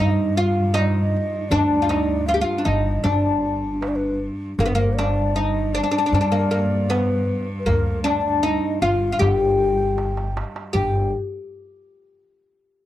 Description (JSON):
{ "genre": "Arabic maqam ensemble", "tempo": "78 BPM", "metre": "4/4", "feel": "straight", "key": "G maqam saba", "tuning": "A4 = 440 Hz", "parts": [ { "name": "oud", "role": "melody", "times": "0.0-11.1 s", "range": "Bb3 to G4", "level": "-21 LUFS", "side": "left 1 dB", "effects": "none" }, { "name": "breathy mellow low ney", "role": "second line", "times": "0.0-11.1 s", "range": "Bb4 to G5", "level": "-28 LUFS", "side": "equal", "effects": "none" }, { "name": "upright bass", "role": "bass", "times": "0.0-11.1 s", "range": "G1 to G2", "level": "-24 LUFS", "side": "equal", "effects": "none" }, { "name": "bright cello", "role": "drone", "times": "0.0-10.8 s", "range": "G2", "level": "-31 LUFS", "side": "equal", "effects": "stereo widening" }, { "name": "darbuka", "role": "percussion", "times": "0.4-11.1 s", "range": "none", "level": "-27 LUFS", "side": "right 1 dB", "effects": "none" } ], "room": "little or no reverb", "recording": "dry, close 1970s-style studio recording, lossy compression artefacts", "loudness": "-18 LUFS", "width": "side -13 dB against mid", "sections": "0.0-10.7 A section; 10.7-12.9 B section", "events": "drum fill 10.0-10.7", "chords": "none", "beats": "0.74 | 1.51 2.28 3.05 3.82 | 4.59 5.36 6.12 6.89 | 7.66 8.43 9.20 9.97 | 10.74" }